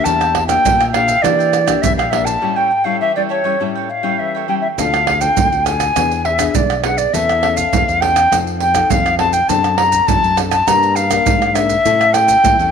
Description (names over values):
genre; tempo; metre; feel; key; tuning
samba and choro; 102 BPM; 4/4; straight; D minor; A4 = 440 Hz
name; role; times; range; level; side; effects
concert flute; melody; 0.0-12.7 s; C#5 to Bb5; -14 LUFS; left 1 dB; none
cavaquinho; accompaniment; 0.0-4.8 s; D4 to G5; -25 LUFS; right 12 dB; none
nylon-string guitar; accompaniment; 0.0-12.7 s; A2 to Bb4; -23 LUFS; left 14 dB; none
fingered electric bass; bass; 0.1-12.7 s; Bb1 to E3; -22 LUFS; left 1 dB; none
maracas, surdo, pandeiro and tamborim; percussion; 0.1-12.7 s; none; -19 LUFS; right 6 dB; none
room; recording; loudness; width
moderate plate reverb, RT60 2.7 s; 1960s-style stereo with parts hard left and right; -12 LUFS; side -7 dB against mid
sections
0.0-4.8 A section; 4.8-12.7 B section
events
break 2.4-4.8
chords
0.1 Em7b5; 2.4 A7; 4.8 Dm7; 6.0 E7; 7.1 A/E; 8.3 F7; 9.5 D7/F#; 10.7 Gm; 11.8 A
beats
| 0.06 0.65 1.24 1.83 | 2.42 3.01 3.60 4.19 | 4.78 5.37 5.96 6.55 | 7.14 7.73 8.32 8.90 | 9.49 10.08 10.67 11.26 | 11.85 12.44